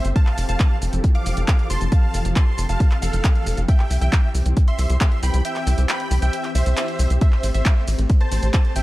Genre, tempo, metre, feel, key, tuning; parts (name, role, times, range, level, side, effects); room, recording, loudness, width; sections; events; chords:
uplifting trance; 136 BPM; 4/4; straight; A4 = 440 Hz
dense compressed supersaw; melody; 0.0-8.8 s; A4 to D6; -29 LUFS; right 1 dB; sidechain pumping, digital delay
wide unison pluck; second line; 0.0-8.8 s; E5 to D6; -36 LUFS; equal
analog string pad; sustained chords; 0.0-8.8 s; E3 to A4; -31 LUFS; left 2 dB; ensemble chorus, sidechain pumping
tight sequencer bass; bass; 0.0-8.8 s; F1 to C2; -19 LUFS; equal; sidechain pumping
punchy analog drum machine; drums; 0.0-8.8 s; handclaps, hi-hat, ride cymbal, shaker; -28 LUFS; equal; sidechain pumping on hats, sidechain pumping on cymbals, sidechain pumping on perc
electronic kick drum; drums; 0.2-8.6 s; -16 LUFS; equal; overdrive
little or no reverb; dark, warm production; -17 LUFS; side -18 dB against mid
0.0-8.8 A section
break 5.5-7.2
0.2 Fmaj7; 3.7 C; 7.2 Am7